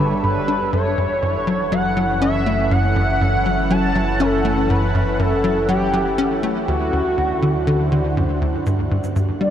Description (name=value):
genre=ambient, sequencer-driven space music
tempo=121 BPM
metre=4/4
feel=straight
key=unclear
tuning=A4 = 440 Hz
part: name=expressive synth lead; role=melody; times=0.0-9.5 s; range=F#4 to A5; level=-21 LUFS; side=equal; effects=analog chorus, shimmer reverb, analog delay
part: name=lush unison pad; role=sustained chords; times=0.0-9.5 s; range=D3 to F#5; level=-24 LUFS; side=right 1 dB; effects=chorus, shimmer reverb
part: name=tight sequencer bass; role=riff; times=0.0-9.5 s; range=D2 to D4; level=-20 LUFS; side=left 1 dB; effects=ensemble chorus, analog delay
part: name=analog drone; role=bass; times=0.0-9.5 s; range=F#1 to D2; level=-26 LUFS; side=equal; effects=chorus
part: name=cabasa and woodblock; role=percussion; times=8.7-9.5 s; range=none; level=-43 LUFS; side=left 3 dB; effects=none
room=wet huge ambient reverb, RT60 9.0 s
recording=dark, warm production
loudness=-16 LUFS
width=side -10 dB against mid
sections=0.0-8.7 A section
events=none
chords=0.0 G; 0.7 F#m7; 6.7 D7; 8.7 Gm7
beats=0.23 | 0.73 1.23 1.72 2.22 | 2.71 3.21 3.71 4.20 | 4.70 5.19 5.69 6.18 | 6.68 7.18 7.67 8.17 | 8.66 9.16